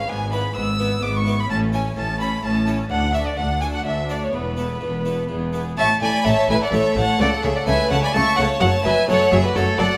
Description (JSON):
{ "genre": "classical, baroque-style concerto movement with solo episodes", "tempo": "127 BPM", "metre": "3/4", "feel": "straight", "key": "A major", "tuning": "A4 = 439 Hz", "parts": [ { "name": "rich chamber violin section", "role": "melody", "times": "0.0-10.0 s", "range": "G#4 to C#6", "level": "-31 LUFS", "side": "equal", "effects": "none" }, { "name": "rich violin", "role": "melody", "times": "0.0-10.0 s", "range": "A4 to E6", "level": "-25 LUFS", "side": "equal", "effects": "none" }, { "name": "rich chamber violin section", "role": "second line", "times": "0.0-9.9 s", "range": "F#4 to E6", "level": "-29 LUFS", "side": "equal", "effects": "none" }, { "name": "harpsichord", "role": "accompaniment", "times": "0.0-10.0 s", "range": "D2 to B4", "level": "-30 LUFS", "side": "equal", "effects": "none" }, { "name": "rich chamber viola section", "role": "accompaniment", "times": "0.0-9.9 s", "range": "F#3 to D4", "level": "-31 LUFS", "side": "equal", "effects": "none" }, { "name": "clear chamber double bass section", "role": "bass", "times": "0.0-9.9 s", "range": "E1 to D2", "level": "-28 LUFS", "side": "equal", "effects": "none" }, { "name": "warm studio cello section", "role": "bass", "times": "0.0-9.9 s", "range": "D2 to C#3", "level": "-28 LUFS", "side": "equal", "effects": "none" } ], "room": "moderate recital hall reverb, RT60 1.6 s", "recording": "none", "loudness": "-20 LUFS", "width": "mono", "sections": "0.0-5.8 A section; 5.8-10.0 B section", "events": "none", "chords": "0.1 E/G#; 1.5 A; 2.9 D; 4.3 Esus4; 5.3 E; 5.8 A5; 7.2 A/C#; 8.6 F#m" }